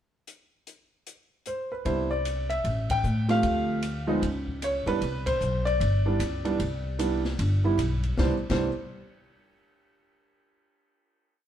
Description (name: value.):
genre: jazz piano trio.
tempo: 152 BPM.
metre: 4/4.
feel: swing 64% on 8ths.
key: C major.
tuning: A4 = 440 Hz.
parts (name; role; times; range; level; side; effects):
open jazz drum kit; drums; 0.3-8.6 s; crash cymbal, hi-hat, kick drum, ride cymbal, rim click, snare drum; -36 LUFS; left 2 dB; none.
warm concert grand piano; melody; 1.5-8.7 s; E3 to G5; -27 LUFS; right 1 dB; none.
upright bass; bass; 1.9-8.7 s; G1 to A2; -28 LUFS; equal; none.
room: moderate stone room reverb, RT60 1.2 s.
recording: band playing live in one room.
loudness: -24 LUFS.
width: side -10 dB against mid.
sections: 0.3-1.9 pickup bar; 1.9-8.2 A section; 8.2-9.8 final chord.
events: band accent 2.8, 5.2.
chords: 0.3 N.C.; 1.9 Cmaj9; 2.6 A7(no3); 3.4 Dm7; 4.2 C#7(no3); 5.0 Cmaj9; 8.2 C.